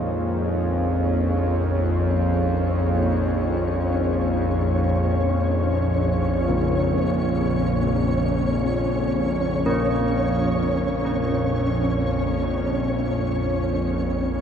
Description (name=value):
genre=dark ambient drone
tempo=free time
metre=none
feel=none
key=Bb minor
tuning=A4 = 440 Hz
part: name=deep dark ambient pad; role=sustained chords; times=0.0-14.4 s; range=Bb3 to Db5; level=-28 LUFS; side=right 1 dB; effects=chorus, built-in reverb, shimmer reverb
part: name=bowed-like drone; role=drone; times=0.0-14.4 s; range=Bb1 to F2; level=-23 LUFS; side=equal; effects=built-in reverb
part: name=flickering grainy texture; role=texture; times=0.8-14.4 s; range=Db4 to Db5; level=-27 LUFS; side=equal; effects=built-in reverb, shimmer reverb
part: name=carillon bells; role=arpeggios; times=6.5-14.4 s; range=Bb2 to Bb3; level=-26 LUFS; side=left 1 dB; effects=analog delay, shimmer reverb
room=wet cathedral reverb, RT60 5.3 s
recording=dreamy mix soaked in reverb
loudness=-20 LUFS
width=side -8 dB against mid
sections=0.0-14.4 A section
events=none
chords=0.0 Bbm7